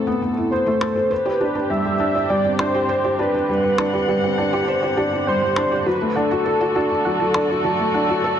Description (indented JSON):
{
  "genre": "piano and strings electronica",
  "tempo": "101 BPM",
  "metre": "4/4",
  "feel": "straight",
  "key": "unclear",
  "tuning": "A4 = 440 Hz",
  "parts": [
    { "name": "muted string quartet", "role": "sustained chords", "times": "0.0-8.4 s", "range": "C3 to F#5", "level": "-28 LUFS", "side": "left 2 dB", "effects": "none" },
    { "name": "felt-muted upright piano", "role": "riff", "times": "0.0-8.4 s", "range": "F#3 to C5", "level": "-21 LUFS", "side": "equal", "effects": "tape echo" },
    { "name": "warm velvety synth lead", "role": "melody", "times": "0.5-8.4 s", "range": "A4 to E5", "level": "-21 LUFS", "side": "right 1 dB", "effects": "chorus" },
    { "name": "percussion blips", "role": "drums", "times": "0.8-7.5 s", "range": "none", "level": "-23 LUFS", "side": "left 1 dB", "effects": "none" },
    { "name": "soft round pluck", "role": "arpeggios", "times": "1.3-8.2 s", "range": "F#4 to C6", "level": "-30 LUFS", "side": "right 2 dB", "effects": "none" }
  ],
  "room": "moderate lush hall reverb, RT60 2.3 s",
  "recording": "nothing above 10.5 kHz",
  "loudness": "-17 LUFS",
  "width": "side -9 dB against mid",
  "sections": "0.0-8.4 A section",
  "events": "filter sweep on felt piano 0.0-8.4",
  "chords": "0.0 Amadd9; 1.1 Csus2; 5.9 D",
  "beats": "0.52 | 1.11 1.70 2.30 2.89 | 3.49 4.08 4.67 5.27 | 5.86 6.46 7.05 7.64 | 8.24"
}